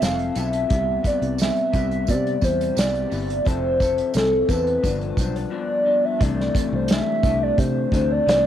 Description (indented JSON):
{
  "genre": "indie pop, bedroom pop",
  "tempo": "87 BPM",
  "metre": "4/4",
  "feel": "straight",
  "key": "C major",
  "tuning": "A4 = 440 Hz",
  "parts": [
    { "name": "hollow clarinet-like synth lead", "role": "melody", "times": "0.0-8.5 s", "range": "A4 to F5", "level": "-22 LUFS", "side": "right 1 dB", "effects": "phaser, wide subtle chorus, analog delay" },
    { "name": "electric guitar through a small old amp", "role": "accompaniment", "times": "0.0-8.5 s", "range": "G2 to A4", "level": "-26 LUFS", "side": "left 6 dB", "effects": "lush chorus, warbly pitch drift, cassette tape" },
    { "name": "fingered electric bass", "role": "bass", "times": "0.0-8.5 s", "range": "F1 to C3", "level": "-26 LUFS", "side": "right 1 dB", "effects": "tube saturation" },
    { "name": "unplugged drum kit", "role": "drums", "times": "0.0-8.4 s", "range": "hi-hat, kick drum, snare drum", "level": "-24 LUFS", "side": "right 1 dB", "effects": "cassette tape" },
    { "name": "tambourine", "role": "percussion", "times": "0.0-5.3 s", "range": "none", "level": "-39 LUFS", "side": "right 12 dB", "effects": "none" }
  ],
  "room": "light reverb, studio reverb",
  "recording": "home recording on cassette",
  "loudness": "-19 LUFS",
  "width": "side -10 dB against mid",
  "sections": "0.0-6.2 A section; 6.2-8.5 B section",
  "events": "none",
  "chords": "0.0 Fmaj7; 0.7 Cmaj7; 3.5 Fmaj7; 4.8 G7; 6.2 C69",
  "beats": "0.02 | 0.71 1.40 2.08 2.77 | 3.46 4.15 4.84 5.53 | 6.21 6.90 7.58 8.27"
}